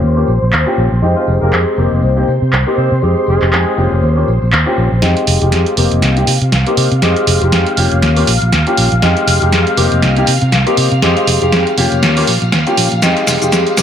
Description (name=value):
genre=filtered disco house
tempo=120 BPM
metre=4/4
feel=swing 57% on 16ths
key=F minor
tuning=A4 = 440 Hz
part: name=warm grand piano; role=accompaniment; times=0.0-13.8 s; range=Ab3 to G4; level=-16 LUFS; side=left 2 dB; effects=phaser, low-pass filter
part: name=string machine, full ensemble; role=sustained chords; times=0.0-13.8 s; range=C5 to F6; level=-20 LUFS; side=equal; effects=phaser, ensemble chorus, low-pass filter
part: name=fingered electric bass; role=bass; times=0.0-13.8 s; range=F1 to C3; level=-14 LUFS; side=equal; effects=low-pass filter
part: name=tambourine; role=percussion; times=0.0-13.8 s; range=none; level=-32 LUFS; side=left 4 dB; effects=none
part: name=punchy analog drum machine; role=drums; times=0.5-13.8 s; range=cabasa, handclaps, hi-hat, snare drum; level=-16 LUFS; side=right 1 dB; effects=low-pass filter on snare, low-pass filter on hats, low-pass filter on perc
part: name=brilliant horn section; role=melody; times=1.2-3.9 s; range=F3 to C5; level=-24 LUFS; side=equal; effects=low-pass filter, analog delay
room=moderate spring reverb, RT60 1.8 s, small room ambience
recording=echo-heavy mix, high-pass filter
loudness=-10 LUFS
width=side -9 dB against mid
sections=0.0-5.0 A section; 5.0-13.8 B section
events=filter sweep 0.0-5.0, 5.0-13.8; build-up 5.0-13.8; drum fill 5.0-13.8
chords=0.0 Eb7; 1.0 Fm7; 2.0 Cm7; 3.0 Fm7; 4.0 Eb7; 5.0 Fm7; 6.0 Cm7; 7.0 Fm7; 8.0 Eb7; 9.0 Fm7; 10.0 Cm7; 11.0 Fm7; 12.0 Eb7; 13.0 Fm7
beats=0.03 0.53 | 1.03 1.53 2.03 2.53 | 3.03 3.53 4.03 4.53 | 5.03 5.53 6.03 6.53 | 7.03 7.53 8.03 8.53 | 9.03 9.53 10.03 10.53 | 11.03 11.53 12.03 12.53 | 13.03 13.53